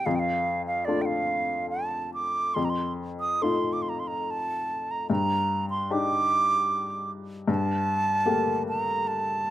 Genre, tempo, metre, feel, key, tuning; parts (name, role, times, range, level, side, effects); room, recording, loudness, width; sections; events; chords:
celtic folk, Celtic slow air; 73 BPM; 3/4; uneven beats, rubato; A4 = 440 Hz
bright wooden flute; melody; 0.0-9.5 s; D5 to Eb6; -26 LUFS; right 2 dB; slapback echo
warm upright piano; accompaniment; 0.0-9.5 s; F2 to G4; -29 LUFS; left 3 dB; slapback echo
light reverb; recorded outdoors, with no room sound; -24 LUFS; side -13 dB against mid
0.0-9.5 A section
0.1 F6; 2.6 F7; 5.1 Ebmaj7/G; 7.5 Gmadd9